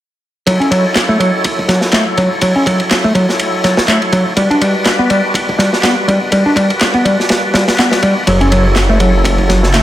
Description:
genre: breakbeat, breaks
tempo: 123 BPM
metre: 4/4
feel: swing 56% on 16ths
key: F# phrygian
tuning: A4 = 439 Hz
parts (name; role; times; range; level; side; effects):
- tonewheel organ; sustained chords; 0.5-9.8 s; F#3 to D5; -17 LUFS; equal; overdrive, chorus vibrato, slow rotary speaker, sidechain pumping
- picked electric bass; riff; 0.5-9.8 s; F#3 to D4; -13 LUFS; equal; overdrive, vintage 12-bit sampler grit, low-pass filter, tape echo
- crunchy breakbeat drum kit; drums; 0.5-9.8 s; kick drum, ride cymbal, snare drum; -16 LUFS; equal; high-pass filter on kick, high-pass filter on cymbals, high-pass filter on snare, high-pass filter on room
- electronic handclaps; drums; 1.0-9.8 s; none; -18 LUFS; equal; none
- phased detuned saw bass; bass; 8.3-9.8 s; F#1; -12 LUFS; equal; phaser
room: light reverb, small room ambience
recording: none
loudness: -10 LUFS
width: side -13 dB against mid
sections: 0.5-9.8 A section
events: none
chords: 0.5 F#m7; 4.4 Gmaj7; 8.3 F#m7

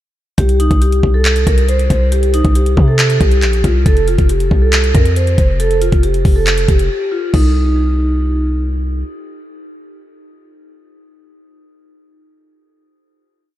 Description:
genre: hip hop, trap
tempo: 138 BPM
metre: 4/4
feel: half-time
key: C dorian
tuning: A4 = 440 Hz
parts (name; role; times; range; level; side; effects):
- vibraphone with medium mallets; melody; 0.4-8.6 s; Eb4 to C5; -18 LUFS; right 1 dB; ping-pong delay
- warm 808-style bass; bass; 0.4-9.0 s; F1 to C3; -14 LUFS; equal; none
- trap drum kit; drums; 0.4-7.4 s; crash cymbal, handclaps, hi-hat, kick drum; -14 LUFS; equal; none
room: light reverb, digital ambience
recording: none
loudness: -11 LUFS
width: side -13 dB against mid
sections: 0.4-7.3 hook; 7.3-10.8 final chord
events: break 6.9-7.3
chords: 0.4 C5; 3.9 F5; 7.3 Cm

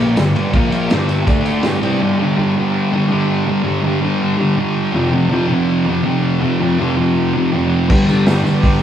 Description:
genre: garage rock duo or trio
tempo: 163 BPM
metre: 4/4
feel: straight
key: G mixolydian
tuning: A4 = 439 Hz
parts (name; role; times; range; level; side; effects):
- overdriven combo organ; sustained chords; 0.0-2.0, 7.9-8.8 s; D4 to F5; -27 LUFS; equal; none
- thick fuzz guitar; riff; 0.0-8.8 s; F2 to D4; -14 LUFS; equal; distortion
- vintage drum kit; drums; 0.2-1.9, 7.9-8.7 s; crash cymbal, hi-hat, kick drum, ride cymbal, snare drum; -19 LUFS; equal; vintage 12-bit sampler grit
- tambourine; percussion; 0.2-1.9, 8.1-8.8 s; none; -43 LUFS; right 5 dB; none
room: wet large studio reverb, RT60 1.3 s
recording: band playing live in one room, cassette tape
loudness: -13 LUFS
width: side -10 dB against mid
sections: 0.0-2.0 A section; 2.0-8.8 B section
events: none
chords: 0.0 G; 0.5 Bb5; 0.9 G; 1.3 D5; 1.6 G; 2.0 G5; 5.0 F5; 7.9 G

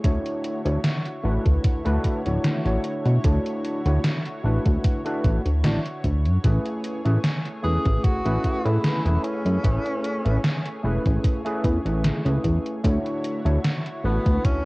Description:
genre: vaporwave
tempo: 75 BPM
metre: 4/4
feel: swing 54% on 16ths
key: unclear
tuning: A4 = 442 Hz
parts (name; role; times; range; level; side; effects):
- overdriven tine electric piano; accompaniment; 0.0-14.6 s; A3 to D5; -28 LUFS; equal; analog chorus, cassette tape, tape echo
- lush unison pad; sustained chords; 0.0-14.7 s; D3 to C#5; -37 LUFS; equal; chorus, cassette tape
- chorused synth bass; bass; 0.0-14.6 s; D1 to B2; -22 LUFS; equal; none
- electronic kick drum; drums; 0.0-14.6 s; none; -22 LUFS; equal; small room ambience
- gated 80s digital drum machine; drums; 0.0-14.6 s; hi-hat, snare drum; -25 LUFS; equal; gated reverb, gated reverb snare, small room ambience
- breathy tenor saxophone; melody; 7.6-14.7 s; B3 to G#4; -29 LUFS; equal; cassette tape, tape echo
room: little or no reverb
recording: home recording on cassette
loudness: -21 LUFS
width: side -23 dB against mid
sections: 0.0-14.7 A section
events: none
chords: 0.0 Dmaj9; 6.4 Amaj7; 12.8 Dmaj9

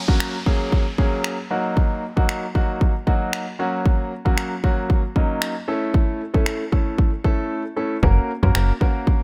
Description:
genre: dance-pop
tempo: 115 BPM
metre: 4/4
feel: straight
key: F# major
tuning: A4 = 439 Hz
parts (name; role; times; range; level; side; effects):
- downlifter; sound effects; 0.0-3.9 s; none; -37 LUFS; equal; none
- warm concert grand piano; accompaniment; 0.1-9.2 s; F#3 to A#4; -27 LUFS; equal; none
- house drum kit; drums; 0.1-9.2 s; finger snaps, kick drum; -22 LUFS; equal; none
- slap-like FM bass; bass; 8.0-8.7 s; F#1 to F#2; -20 LUFS; equal; sidechain pumping
room: little or no reverb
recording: none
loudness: -21 LUFS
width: mono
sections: 0.0-9.2 A section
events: break 7.5-8.0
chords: 0.0 F#; 1.5 D#m/F#; 3.6 F#; 5.7 A; 8.0 F#

